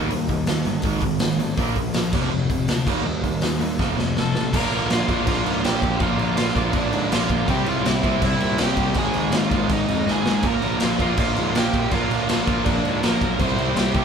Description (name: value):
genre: punk rock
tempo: 163 BPM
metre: 4/4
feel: straight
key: Bb mixolydian from 4.5 s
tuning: A4 = 438 Hz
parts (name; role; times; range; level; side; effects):
- crunchy overdriven guitar; riff; 0.0-14.0 s; F2 to F4; -25 LUFS; right 8 dB; none
- sludgy distorted guitar; riff; 0.0-14.0 s; F2 to Eb4; -26 LUFS; left 8 dB; overdrive
- fuzz picked electric bass; bass; 0.0-14.0 s; F1 to Bb2; -28 LUFS; equal; overdrive
- raw garage drum kit; drums; 0.1-14.0 s; crash cymbal, hi-hat, kick drum, snare drum; -23 LUFS; equal; none
- bluesy overdriven lead guitar; melody; 4.2-14.0 s; D4 to C6; -27 LUFS; equal; distortion
- fuzz guitar; riff; 4.5-14.0 s; Ab2 to C4; -30 LUFS; equal; none
room: moderate large studio reverb, RT60 1.5 s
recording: band playing live in one room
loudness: -19 LUFS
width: side -6 dB against mid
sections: 0.0-4.5 A section; 4.5-14.0 B section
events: drum fill 3.8-4.5, 10.1-10.4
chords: 0.0 Eb; 0.9 Ab5; 1.6 Bb5; 2.1 F5; 2.9 Eb; 3.8 F; 4.5 Bb; 7.5 C; 9.0 Ab; 10.4 Bb; 13.4 C